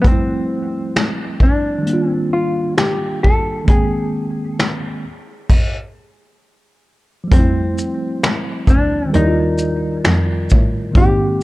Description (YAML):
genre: lo-fi hip hop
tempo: 66 BPM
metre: 4/4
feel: swing 64% on 16ths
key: F major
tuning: A4 = 440 Hz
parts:
  - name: hollow-body jazz guitar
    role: melody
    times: 0.0-11.4 s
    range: B3 to A4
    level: -22 LUFS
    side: left 1 dB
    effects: low-pass filter
  - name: tine electric piano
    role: accompaniment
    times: 0.0-11.4 s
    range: Eb3 to G5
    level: -20 LUFS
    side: right 1 dB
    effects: medium stereo tremolo, low-pass filter
  - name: vintage brush drum kit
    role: drums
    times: 0.0-11.2 s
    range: crash cymbal, finger snaps, hi-hat, kick drum, shaker, snare drum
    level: -15 LUFS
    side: equal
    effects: vintage 12-bit sampler grit
  - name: rich cello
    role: bass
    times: 7.3-11.3 s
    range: D2 to A2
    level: -19 LUFS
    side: equal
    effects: none
room: small room ambience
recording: dark, warm production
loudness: -14 LUFS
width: side -19 dB against mid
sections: 0.0-7.3 A section; 7.3-11.4 B section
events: stop 5.5-7.3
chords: 0.0 Fmaj9; 1.9 Ebmaj9; 3.7 Abmaj9; 5.0 N.C.; 7.3 Fmaj9; 9.1 Ebmaj9